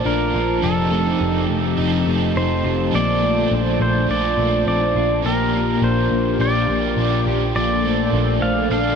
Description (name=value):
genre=dream pop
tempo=104 BPM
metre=4/4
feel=straight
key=Bb major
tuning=A4 = 440 Hz
part: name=overdriven electric guitar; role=accompaniment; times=0.0-9.0 s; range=Bb2 to A4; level=-26 LUFS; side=right 4 dB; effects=tremolo, analog chorus
part: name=hollow soft pad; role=sustained chords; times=0.0-9.0 s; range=Bb2 to A5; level=-24 LUFS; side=right 2 dB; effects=chorus
part: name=semi-hollow electric guitar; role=arpeggios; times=0.0-9.0 s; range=F2 to G4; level=-22 LUFS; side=left 4 dB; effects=analog chorus, tape echo
part: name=pedal steel guitar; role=melody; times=0.1-9.0 s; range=A4 to F5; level=-23 LUFS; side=right 1 dB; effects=tape echo
part: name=vintage muted picked electric bass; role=bass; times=0.1-9.0 s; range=F1 to Bb1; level=-24 LUFS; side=right 1 dB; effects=none
room=moderate huge ambient reverb, RT60 6.1 s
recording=none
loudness=-16 LUFS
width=side -6 dB against mid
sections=0.0-9.0 A section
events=none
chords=0.0 Bbmaj7; 0.6 F7; 2.9 Bbmaj7; 5.2 Gm7/Bb; 7.6 Bbmaj7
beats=0.05 | 0.63 1.21 1.78 2.36 | 2.94 3.51 4.09 4.67 | 5.24 5.82 6.40 6.97 | 7.55 8.13 8.71